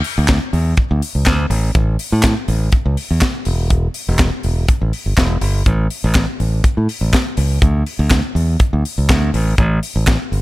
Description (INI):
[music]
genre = disco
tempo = 123 BPM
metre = 4/4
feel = straight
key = E dorian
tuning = A4 = 438 Hz
[part]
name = tight funk drum kit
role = drums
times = 0.0-10.4 s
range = handclaps, hi-hat, kick drum, snare drum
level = -17 LUFS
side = equal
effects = none
[part]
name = modern bright fingered electric bass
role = bass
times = 0.2-10.4 s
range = E1 to A2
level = -16 LUFS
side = equal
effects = none
[sound]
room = little or no reverb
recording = none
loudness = -14 LUFS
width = side -18 dB against mid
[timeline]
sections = 0.0-10.4 A section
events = none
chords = none